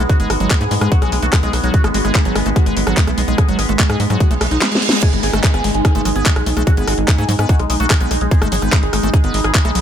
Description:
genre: psychedelic trance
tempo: 146 BPM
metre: 4/4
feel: straight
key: G# phrygian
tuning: A4 = 440 Hz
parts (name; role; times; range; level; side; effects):
- overdriven synth lead; melody; 0.0-9.7 s; G#3 to G#4; -23 LUFS; left 1 dB; phaser, cassette tape, sidechain pumping, digital delay
- overtone-sweeping drone; sustained chords; 0.0-9.8 s; G#3 to D#4; -24 LUFS; equal; chorus, built-in reverb, sidechain pumping
- liquid acid bass; riff; 0.0-9.8 s; F#3 to D#4; -24 LUFS; moving between left 3 dB and right 3 dB; chorus, auto-pan, sidechain pumping, digital delay
- tight sequencer bass; bass; 0.0-9.8 s; G#1 to G#2; -19 LUFS; equal; none
- warbly tape-like pad; texture; 0.0-9.8 s; D#4 to B5; -29 LUFS; right 3 dB; chorus, built-in reverb, sidechain pumping
- electronic kick drum; drums; 0.1-9.6 s; none; -14 LUFS; equal; none
- garage drum kit; drums; 0.1-9.8 s; crash cymbal, handclaps, hi-hat, rim click, snare drum; -20 LUFS; left 1 dB; none
- reverse cymbal and downlifter; sound effects; 4.4-8.3 s; none; -26 LUFS; right 3 dB; none
room: little or no reverb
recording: none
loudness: -13 LUFS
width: side -9 dB against mid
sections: 0.0-5.0 A section; 5.0-9.8 B section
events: reverse cymbal 4.4-5.0; drum fill 4.6-5.0; drop 5.0-9.8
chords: 0.0 G#5

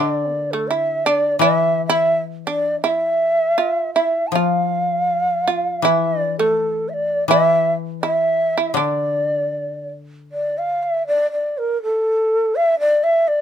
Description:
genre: japanese traditional, Japanese chamber music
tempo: 74-85 BPM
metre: 2/4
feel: rubato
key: unclear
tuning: A4 = 441 Hz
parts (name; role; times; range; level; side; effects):
- breathy mellow long shakuhachi; melody; 0.0-13.4 s; A4 to A5; -18 LUFS; equal; none
- shamisen; second line; 0.0-9.9 s; A3 to F4; -23 LUFS; right 6 dB; none
- koto; accompaniment; 0.0-11.1 s; D3 to F3; -23 LUFS; left 6 dB; none
room: light reverb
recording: minimal, uncompressed stereo recording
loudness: -16 LUFS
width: side -9 dB against mid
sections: 0.0-10.3 A section; 10.3-13.4 B section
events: none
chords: none

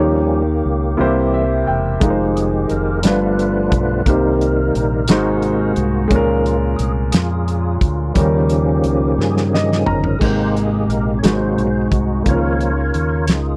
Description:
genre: slow gospel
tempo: 58 BPM (dotted quarters)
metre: 6/8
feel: straight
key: Ab major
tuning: A4 = 439 Hz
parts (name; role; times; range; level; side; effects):
- warm grand piano; accompaniment; 0.0-13.6 s; G2 to Bb5; -21 LUFS; equal; none
- tonewheel organ; sustained chords; 0.0-13.6 s; C3 to Db5; -23 LUFS; equal; slow rotary speaker, overdrive, chorus vibrato
- fingered electric bass; bass; 0.0-13.6 s; E1 to G2; -23 LUFS; equal; none
- warm soul drum kit; drums; 2.0-13.5 s; crash cymbal, hi-hat, kick drum, snare drum, toms; -20 LUFS; equal; none
room: little or no reverb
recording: dry, close 1970s-style studio recording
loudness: -17 LUFS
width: mono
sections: 0.0-10.2 A section; 10.2-13.6 B section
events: tonewheel organ solo 0.0-10.2, 10.2-13.6; grand piano fill 1.0-2.0, 9.2-10.2; drum fill 9.2-10.2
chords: 0.0 Eb7; 1.0 C7; 2.0 Fm7; 3.0 G7; 4.1 Cm7; 5.1 Ab7; 6.1 Db6; 8.2 Eb7; 10.2 Abmaj9; 11.2 Ab7; 12.3 Db69

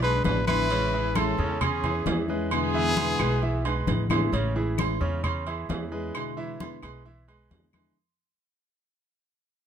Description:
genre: latin, Cuban son and guajira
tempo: 132 BPM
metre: 4/4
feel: straight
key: A major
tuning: A4 = 440 Hz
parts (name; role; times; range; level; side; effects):
- warm trumpet; melody; 0.0-3.8 s; G#4 to B4; -28 LUFS; left 1 dB; none
- rich studio violin section; second line; 0.0-3.8 s; B3 to E4; -35 LUFS; equal; none
- bright baby grand piano; arpeggios; 0.0-7.9 s; C#3 to E5; -32 LUFS; right 3 dB; none
- upright bass; bass; 0.0-7.9 s; A1 to E2; -29 LUFS; equal; none
- agogo bells and timbales; percussion; 0.0-8.0 s; none; -32 LUFS; right 8 dB; none
- congas; percussion; 0.0-8.0 s; none; -31 LUFS; left 3 dB; none
- nylon-string guitar; accompaniment; 0.2-8.0 s; B2 to E4; -32 LUFS; left 3 dB; none
- claves; percussion; 0.5-8.0 s; none; -39 LUFS; left 5 dB; none
room: light reverb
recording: close, detailed microphones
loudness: -24 LUFS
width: side -8 dB against mid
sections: 0.0-4.3 A section; 4.3-8.0 B section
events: drum fill 3.7-4.3; fade-out 4.3-8.0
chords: 0.0 E7; 0.7 Amaj7; 2.5 E7; 4.3 Amaj7; 6.1 E7

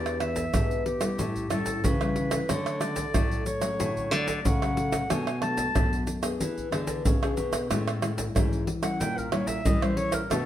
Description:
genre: samba and choro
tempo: 92 BPM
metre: 4/4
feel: straight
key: A major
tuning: A4 = 440 Hz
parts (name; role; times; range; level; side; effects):
- clear clarinet; melody; 0.0-10.5 s; G4 to A5; -32 LUFS; left 1 dB; none
- nylon-string guitar; accompaniment; 0.0-10.5 s; F#2 to G#4; -31 LUFS; left 2 dB; none
- nylon-string guitar; bass; 0.0-10.5 s; E2 to E3; -32 LUFS; equal; none
- tube shaker, pandeiro, tamborim and surdo; percussion; 0.1-10.5 s; none; -28 LUFS; right 1 dB; none
room: wet studio reverb, RT60 0.8 s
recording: band playing live in one room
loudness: -24 LUFS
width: side -11 dB against mid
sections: 0.0-10.5 A section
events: clarinet solo 0.0-10.5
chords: 0.0 Em7; 1.2 A7; 2.5 Dmaj7; 5.1 Bm7; 6.4 E7; 7.7 Amaj7; 9.0 A#dim7

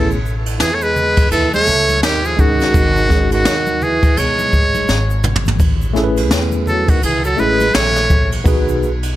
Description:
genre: hip hop, jazz-hop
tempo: 84 BPM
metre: 4/4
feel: swing 61% on 16ths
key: unclear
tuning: A4 = 440 Hz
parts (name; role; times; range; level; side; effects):
- trumpet with metal mute; melody; 0.0-8.3 s; F#4 to C#5; -18 LUFS; equal; tape echo
- breathy trombone; second line; 0.0-8.3 s; D#3 to A3; -21 LUFS; right 3 dB; plate reverb, tape echo
- tine electric piano; accompaniment; 0.0-8.9 s; G#3 to B4; -19 LUFS; equal; medium stereo tremolo, plate reverb
- upright bass; bass; 0.0-9.1 s; G#1 to E2; -20 LUFS; equal; none
- egg shaker and congas; percussion; 0.1-9.2 s; none; -29 LUFS; left 1 dB; none
- jazz brush drum kit; drums; 0.5-9.2 s; hi-hat, kick drum, ride cymbal, snare drum, toms; -17 LUFS; equal; none
room: light reverb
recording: none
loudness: -12 LUFS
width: side -14 dB against mid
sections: 0.0-5.6 A section; 5.6-9.2 B section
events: drum fill 4.9-5.6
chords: 0.0 Amaj7; 2.0 D#m11; 2.7 G#7sus4; 5.6 Amaj9; 8.5 G#m7/B

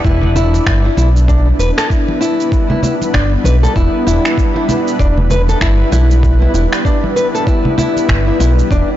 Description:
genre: organic downtempo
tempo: 97 BPM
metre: 4/4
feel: swing 59% on 16ths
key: E minor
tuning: A4 = 438 Hz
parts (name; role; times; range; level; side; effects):
- granular cloud pad; sustained chords; 0.0-9.0 s; G3 to B4; -19 LUFS; equal; built-in reverb, sidechain pumping
- nylon-string guitar; arpeggios; 0.0-8.9 s; D4 to B4; -18 LUFS; left 2 dB; digital delay
- smooth synth bass; bass; 0.0-8.8 s; E1 to B1; -12 LUFS; equal; transformer saturation
- electronic kick drum; drums; 0.0-8.9 s; none; -16 LUFS; equal; overdrive, studio reverb
- electronic shaker and finger snaps; drums; 0.1-8.9 s; none; -23 LUFS; right 1 dB; studio reverb, soft clipping on snare
- congas; percussion; 0.2-8.9 s; none; -20 LUFS; right 2 dB; none
room: digital ambience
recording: blown-out, overdriven recording, overdrive, nothing above 7.6 kHz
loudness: -10 LUFS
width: side -13 dB against mid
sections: 0.0-9.0 A section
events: none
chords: 0.0 Em7

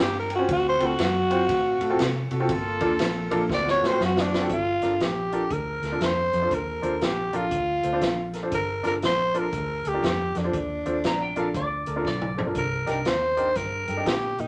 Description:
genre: electric blues shuffle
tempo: 119 BPM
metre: 4/4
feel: swing 63% on 8ths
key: G minor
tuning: A4 = 439 Hz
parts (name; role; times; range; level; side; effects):
- growling tenor saxophone; melody; 0.0-14.5 s; D4 to D5; -28 LUFS; equal; none
- vintage muted fingered electric bass; bass; 0.0-14.5 s; G1 to C3; -34 LUFS; equal; none
- bright grand piano; accompaniment; 0.3-14.4 s; Bb3 to C5; -31 LUFS; equal; none
- swinging big-band drum kit; drums; 0.3-14.5 s; hi-hat, kick drum, ride cymbal, snare drum, toms; -32 LUFS; equal; none
- warm horn section; stabs; 0.5-4.4 s; Bb3 to E#5; -34 LUFS; equal; none
- clean lap steel guitar; second line; 11.1-12.5 s; D5 to Bb5; -33 LUFS; equal; none
room: moderate studio reverb, RT60 0.8 s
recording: none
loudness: -25 LUFS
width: mono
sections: 0.0-4.5 A section; 4.5-14.5 B section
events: tenor saxophone solo 0.0-4.5; drum fill 3.5-4.5, 12.1-12.6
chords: 0.5 D7#9; 2.5 Gm9; 3.5 D7#9; 4.5 Gm9 (rootless); 12.6 Cm9

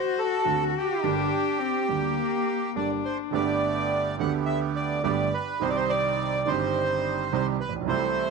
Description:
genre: tango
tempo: 105 BPM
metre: 4/4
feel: rubato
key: G minor, G major from 3.3 s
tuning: A4 = 440 Hz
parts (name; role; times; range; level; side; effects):
- bandoneon; melody; 0.0-8.3 s; G4 to F#5; -27 LUFS; right 2 dB; none
- rich cello; second line; 0.0-3.3 s; Bb3 to F#4; -28 LUFS; left 14 dB; none
- warm grand piano; accompaniment; 0.5-8.3 s; G1 to A4; -28 LUFS; right 8 dB; none
- bandoneon; stabs; 3.3-8.3 s; C3 to G4; -33 LUFS; right 8 dB; none
room: moderate plate reverb, RT60 2.3 s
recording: 1960s-style stereo with parts hard left and right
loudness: -24 LUFS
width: side -4 dB against mid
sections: 0.0-3.3 A section; 3.3-8.3 B section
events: none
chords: 0.0 D7; 1.0 Gm; 3.3 Gadd9; 5.6 Cm

